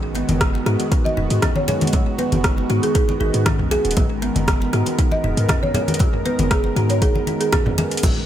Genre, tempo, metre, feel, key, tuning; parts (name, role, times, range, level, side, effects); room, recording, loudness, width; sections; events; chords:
afro house; 118 BPM; 4/4; straight; G# minor; A4 = 442 Hz
warm analog pad; sustained chords; 0.0-8.3 s; D#3 to A#4; -26 LUFS; right 2 dB; chorus, phaser, vintage 12-bit sampler grit, sidechain pumping
warm 808-style bass; bass; 0.0-8.3 s; D#1 to G#2; -22 LUFS; equal; sidechain pumping
congas; percussion; 0.1-8.1 s; -25 LUFS; left 2 dB; analog delay
kalimba; arpeggios; 0.2-8.1 s; G#3 to G#4; -26 LUFS; right 1 dB; sidechain pumping, tape echo
deep house drum kit; drums; 0.2-8.1 s; crash cymbal, hi-hat, rim click, toms; -25 LUFS; right 1 dB; studio reverb, analog delay
electronic kick drum; drums; 0.4-8.1 s; -20 LUFS; equal; studio reverb
folk marimba with medium mallets; melody; 1.1-7.8 s; G#4 to D#5; -25 LUFS; right 1 dB; tape echo
cabasa; percussion; 8.0-8.1 s; -31 LUFS; right 4 dB
light reverb; echo-heavy mix; -16 LUFS; side -11 dB against mid
0.0-8.3 A section
0.0 G#m7